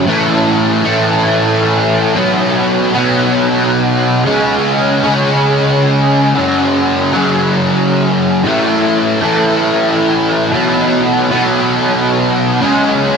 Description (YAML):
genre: rock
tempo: 115 BPM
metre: 4/4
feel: straight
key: unclear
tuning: A4 = 441 Hz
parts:
  - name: fuzz guitar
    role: solo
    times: 0.0-13.2 s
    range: F#2 to C#4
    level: -10 LUFS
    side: equal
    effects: distortion, ensemble chorus, ping-pong delay
room: wet huge ambient reverb, RT60 7.0 s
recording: dreamy mix soaked in reverb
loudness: -10 LUFS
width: side -6 dB against mid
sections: 0.0-13.2 A section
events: none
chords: 0.1 A5; 2.2 B5; 4.3 C#5; 6.3 F#5; 8.4 A5; 10.5 B5; 12.6 C#5